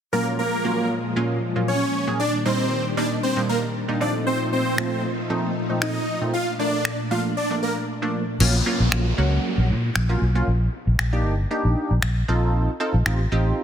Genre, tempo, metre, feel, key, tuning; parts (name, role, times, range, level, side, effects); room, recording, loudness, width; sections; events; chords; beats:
dance-pop; 116 BPM; 4/4; straight; A4 = 441 Hz
supersaw chords; melody; 0.1-7.7 s; Bb3 to F5; -25 LUFS; equal; tape echo
funky polysynth comp; accompaniment; 0.1-13.6 s; Bb2 to A4; -26 LUFS; right 2 dB; chorus
string machine, violins; sustained chords; 0.1-8.4 s; Bb2 to Eb4; -28 LUFS; left 1 dB; ensemble chorus
house drum kit; drums; 4.8-13.2 s; crash cymbal, finger snaps; -28 LUFS; left 2 dB; soft clipping on snare
vintage muted fingered electric bass; bass; 8.4-13.5 s; G1 to Bb2; -20 LUFS; equal
downlifter; sound effects; 8.4-12.5 s; -32 LUFS; equal
light reverb, digital ambience; dense, heavily limited modern master; -20 LUFS; side -9 dB against mid
0.1-8.4 A section; 8.4-13.6 B section
break 7.9-8.4
0.1 Gbmaj7/Bb; 2.2 Ebmaj7/Bb; 4.0 F7/Bb; 6.3 Bbmaj7; 8.4 Gbmaj7/Bb; 10.5 Ebmaj7; 12.3 F7
| 0.13 0.65 1.16 1.68 | 2.20 2.71 3.23 3.75 | 4.27 4.78 5.30 5.82 | 6.33 6.85 7.37 7.89 | 8.40 8.92 9.44 9.96 | 10.47 10.99 11.51 12.03 | 12.54 13.06 13.58